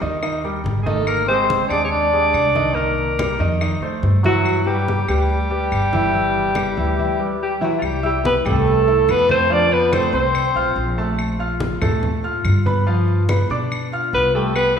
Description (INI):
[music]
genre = Afro-Cuban jazz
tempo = 142 BPM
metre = 4/4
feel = straight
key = C major from 7.8 s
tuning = A4 = 440 Hz
[part]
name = clear concert grand piano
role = accompaniment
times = 0.0-14.8 s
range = Eb3 to F6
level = -23 LUFS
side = equal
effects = none
[part]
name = upright bass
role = bass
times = 0.0-14.8 s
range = G1 to B2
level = -22 LUFS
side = equal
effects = none
[part]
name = congas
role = percussion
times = 0.0-14.8 s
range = none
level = -27 LUFS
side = left 1 dB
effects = none
[part]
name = claves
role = percussion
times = 0.2-14.8 s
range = none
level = -34 LUFS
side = left 3 dB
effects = none
[part]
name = breathy alto saxophone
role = melody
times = 0.8-10.9, 14.1-14.8 s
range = F4 to D5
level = -19 LUFS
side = right 1 dB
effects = none
[part]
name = trombone with metal mute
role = second line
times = 0.8-10.9, 14.1-14.8 s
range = F3 to D4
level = -24 LUFS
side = left 4 dB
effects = none
[sound]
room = wet scoring stage reverb, RT60 1.9 s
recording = recorded in a church or concert hall, studio ambience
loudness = -16 LUFS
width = side -7 dB against mid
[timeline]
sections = 0.0-7.8 A section; 7.8-14.8 B section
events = drum fill 0.9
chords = 0.0 Eb; 1.1 Abmaj7#11; 2.8 Cm7; 3.6 F9; 4.5 G6; 7.8 C; 9.5 F; 11.2 Bb5; 12.9 G7